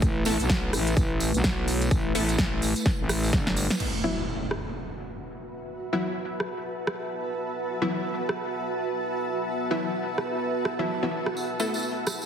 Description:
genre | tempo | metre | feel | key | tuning
bass house | 127 BPM | 4/4 | swing 59% on 16ths | unclear | A4 = 437 Hz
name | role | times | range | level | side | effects
deep dark ambient pad | sustained chords | 0.0-12.3 s | A3 to E5 | -35 LUFS | left 1 dB | chorus, built-in reverb, sidechain pumping
growling FM bass | bass | 0.0-3.7 s | G1 to B1 | -27 LUFS | equal | tube saturation, sidechain pumping
big-room dance drum kit | drums | 0.0-12.2 s | crash cymbal, hi-hat, rim click, snare drum | -30 LUFS | right 1 dB | overdrive
electronic kick drum | drums | 0.0-3.4 s | none | -26 LUFS | equal | overdrive
tambourine | percussion | 0.0-3.8, 11.4-12.3 s | none | -36 LUFS | right 4 dB | none
orchestra-hit-like synth stab | stabs | 0.3-11.8 s | E3 to A4 | -30 LUFS | left 1 dB | built-in reverb, sidechain pumping, dub echo
impact | sound effects | 3.8-5.7 s | none | -34 LUFS | equal | none
granular cloud pad | texture | 5.0-12.3 s | F#4 to A5 | -30 LUFS | right 2 dB | built-in reverb, sidechain pumping
room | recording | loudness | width
moderate lush hall reverb, RT60 1.6 s, digital ambience | heavily compressed radio sound, multiband compression | -24 LUFS | side -8 dB against mid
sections
0.0-3.8 A section; 3.8-12.3 B section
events
drum fill 3.3-3.8; impact 3.8-5.7; filter sweep on synth stab 3.8-12.3; filter sweep on ambient pad 3.8-12.3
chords
0.0 Asus2; 3.8 Esus2; 11.4 Asus2

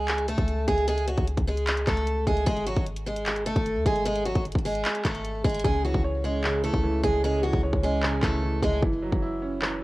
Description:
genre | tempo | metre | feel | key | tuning
hip hop, trap | 151 BPM | 4/4 | half-time | C# minor | A4 = 440 Hz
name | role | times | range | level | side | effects
picked steel-string acoustic guitar | melody | 0.0-8.8 s | F#3 to A4 | -27 LUFS | equal | cassette tape
clean 808-style bass | bass | 0.0-9.8 s | F#1 to D#2 | -30 LUFS | equal | none
trap drum kit | drums | 0.1-9.7 s | handclaps, hi-hat, kick drum | -27 LUFS | equal | cassette tape
clear grand piano | accompaniment | 5.6-9.8 s | C#3 to C#5 | -29 LUFS | right 2 dB | none
room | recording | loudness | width
little or no reverb | home recording on cassette | -23 LUFS | side -19 dB against mid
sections
0.0-9.8 A section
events
hi-hats muted 5.6-9.8; break 8.8-9.8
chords
0.0 C#5; 2.5 G#5; 5.6 C#m; 8.8 F#7(no3)

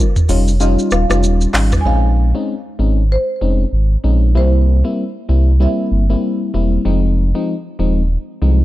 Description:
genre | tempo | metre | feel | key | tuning
afrobeats | 96 BPM | 4/4 | swing 58% on 16ths | unclear | A4 = 441 Hz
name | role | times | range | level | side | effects
marimba with medium mallets | melody | 0.0-6.5 s | Bb4 to Ab5 | -24 LUFS | right 2 dB | ping-pong delay
mellow FM electric piano | accompaniment | 0.0-8.6 s | F3 to F4 | -19 LUFS | left 2 dB | chorus
afro-pop drum kit | drums | 0.2-1.8 s | handclaps, hi-hat, rim click, shaker, toms | -17 LUFS | equal | overdrive
sub bass with octave | bass | 0.3-8.6 s | Eb1 to C2 | -13 LUFS | equal | none
room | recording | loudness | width
little or no reverb | dark, warm production | -13 LUFS | side -16 dB against mid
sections
0.0-1.9 A section; 1.9-8.6 B section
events
kick muted 0.6-1.9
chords
0.0 Eb9; 1.9 Bbm11; 4.4 C7; 6.9 Fm7

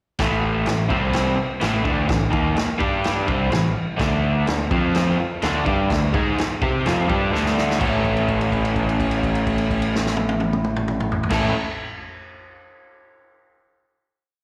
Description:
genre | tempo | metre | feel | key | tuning
garage rock duo or trio | 126 BPM | 4/4 | straight | A mixolydian | A4 = 440 Hz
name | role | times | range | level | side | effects
crunchy overdriven guitar | riff | 0.2-11.5 s | A2 to C5 | -23 LUFS | equal | slapback echo
growling picked electric bass | bass | 0.2-11.5 s | A1 to C3 | -28 LUFS | equal | overdrive
vintage drum kit | drums | 0.2-11.4 s | crash cymbal, kick drum, snare drum, toms | -27 LUFS | equal | none
room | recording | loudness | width
light reverb | live gig heard through the venue's PA, recital hall reverb | -21 LUFS | mono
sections
0.2-7.8 riff; 7.8-11.6 final chord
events
drum fill 7.3-7.8; held note 7.8-11.3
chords
0.2 A5; 0.9 C5; 1.4 A5; 2.8 G5; 3.3 A5; 4.0 D5; 4.7 F5; 5.2 D5; 7.8 A

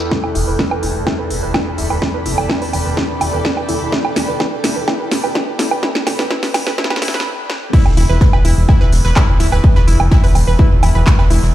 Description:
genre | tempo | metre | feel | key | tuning
melodic techno | 126 BPM | 4/4 | straight | E minor | A4 = 439 Hz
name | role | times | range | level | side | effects
overtone-sweeping drone | drone | 0.0-11.5 s | E2 | -25 LUFS | equal | chorus, built-in reverb, sidechain pumping
granular cloud pad | texture | 0.0-7.3 s | E4 to B5 | -24 LUFS | right 1 dB | built-in reverb, sidechain pumping
analog pluck | arpeggios | 0.1-11.4 s | E4 to B4 | -23 LUFS | equal | chorus, sidechain pumping, digital delay
electronic kick drum | drums | 0.1-11.2 s | none | -12 LUFS | equal | high-pass filter on kick, high-pass filter on room
techno drum kit | drums | 0.1-11.4 s | crash cymbal, handclaps, hi-hat, snare drum, woodblock | -20 LUFS | right 1 dB | none
round analog bass | bass | 0.4-11.5 s | D1 to F1 | -16 LUFS | equal | sidechain pumping
soft brush drum kit | drums | 7.7-11.5 s | ride cymbal, snare drum | -32 LUFS | equal | sidechain pumping on cymbals, high-pass filter on cymbals, high-pass filter on snare, high-pass filter on room
room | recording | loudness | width
digital ambience | played on a big sound system in a bare room, large studio reverb, high-pass filter | -12 LUFS | side -13 dB against mid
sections
0.1-7.7 A section; 7.7-11.5 B section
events
build-up 0.1-7.7; drum fill 0.1-7.3, 7.5; filter sweep on synth pluck 0.1-7.7; filter sweep 0.1-7.7; stop 7.3-7.7; drop 7.7-11.5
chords
0.1 Em; 7.7 E5

